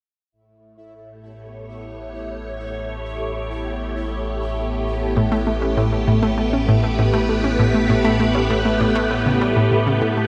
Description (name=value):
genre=ambient, sequencer-driven space music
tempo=99 BPM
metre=4/4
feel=straight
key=unclear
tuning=A4 = 438 Hz
part: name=phased string machine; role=sustained chords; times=1.3-10.3 s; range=A2 to C#5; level=-24 LUFS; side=equal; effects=ensemble chorus, phaser
part: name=warm sub bass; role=bass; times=0.3-10.3 s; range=A1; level=-30 LUFS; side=equal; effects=none
part: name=pulsing gated texture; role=texture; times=0.8-10.0 s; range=E4 to E5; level=-33 LUFS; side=equal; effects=chorus, built-in reverb
part: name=analog pluck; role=riff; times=5.2-10.2 s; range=A2 to C#4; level=-22 LUFS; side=equal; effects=chorus, delay
room=wet huge ambient reverb, RT60 8.8 s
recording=cassette tape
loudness=-20 LUFS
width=mono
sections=0.3-10.0 A section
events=fade-in on string machine 0.3-10.0; fade-in on sub bass 0.3-10.0; fade-in on synth texture 0.3-10.0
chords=0.3 A7